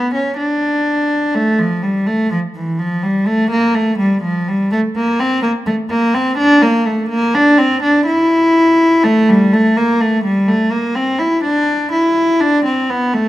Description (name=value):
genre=classical, baroque-style suite movement for unaccompanied cello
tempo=62 BPM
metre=4/4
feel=rubato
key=D minor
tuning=A4 = 440 Hz
part: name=rich cello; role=solo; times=0.0-13.3 s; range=E3 to E4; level=-12 LUFS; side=equal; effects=none
room=moderate recital hall reverb, RT60 1.7 s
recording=none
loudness=-12 LUFS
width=side -15 dB against mid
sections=0.0-13.3 A section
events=none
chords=none